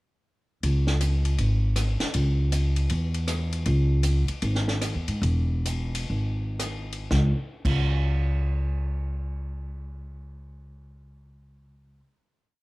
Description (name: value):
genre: modal jazz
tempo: 111-158 BPM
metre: 4/4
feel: swing 65% on 8ths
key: C# minor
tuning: A4 = 439 Hz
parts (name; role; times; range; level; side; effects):
- upright bass; bass; 0.6-12.0 s; E1 to G#2; -24 LUFS; equal; tube saturation
- compact cocktail drum kit; drums; 0.6-7.8 s; crash cymbal, hi-hat, kick drum, ride cymbal, rim click, snare drum; -32 LUFS; equal; cassette tape
room: little or no reverb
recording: home recording on cassette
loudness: -23 LUFS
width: side -21 dB against mid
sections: 0.6-7.1 A section; 7.1-11.4 final note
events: slowing down 3.7-7.1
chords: none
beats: | 0.62 1.00 1.38 1.76 | 2.14 2.52 2.90 3.28 | 3.66 4.04 4.42 4.82 | 5.23 5.66 6.11 6.59 | 7.11 7.65 8.19 8.72 | 9.26 9.80 10.34 10.88